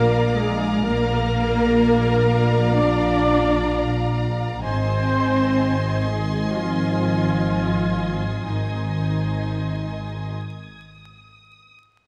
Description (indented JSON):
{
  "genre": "cinematic, suspense film score",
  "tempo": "free time",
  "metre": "none",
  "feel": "none",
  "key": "unclear",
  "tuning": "A4 = 444 Hz",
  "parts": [
    { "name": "rich symphonic violin section", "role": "melody", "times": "0.0-10.3 s", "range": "Bb5 to C6", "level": "-38 LUFS", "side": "equal", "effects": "none" },
    { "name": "warm symphonic violin section", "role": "second line", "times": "0.0-10.3 s", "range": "D5 to Ab5", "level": "-32 LUFS", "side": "equal", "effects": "none" },
    { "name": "clear symphonic viola section", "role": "accompaniment", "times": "0.0-10.4 s", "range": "Eb4 to D5", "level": "-28 LUFS", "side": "equal", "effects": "none" },
    { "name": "dark trombone section", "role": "sustained chords", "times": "0.0-10.3 s", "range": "Eb3 to D4", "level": "-30 LUFS", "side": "equal", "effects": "none" },
    { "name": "mellow French horn section", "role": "sustained chords", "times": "0.0-10.3 s", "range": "Eb3 to D4", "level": "-30 LUFS", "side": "equal", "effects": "none" },
    { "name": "clear symphonic double bass section", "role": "bass", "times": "0.0-10.3 s", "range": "Ab1 to Bb1", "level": "-26 LUFS", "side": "equal", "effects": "none" },
    { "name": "rich symphonic cello section", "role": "bass", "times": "0.0-10.4 s", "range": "Eb3 to D4", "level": "-28 LUFS", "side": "equal", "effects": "none" },
    { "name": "rich symphonic violin section", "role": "texture", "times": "0.0-11.7 s", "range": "Bb5 to Ab6", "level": "-40 LUFS", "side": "equal", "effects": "none" }
  ],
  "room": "moderate scoring stage reverb, RT60 1.6 s",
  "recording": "vinyl crackle",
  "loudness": "-21 LUFS",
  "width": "mono",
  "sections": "0.0-12.1 A section",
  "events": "break 10.4-12.1",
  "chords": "0.0 Bb; 4.6 Ab",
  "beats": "free time"
}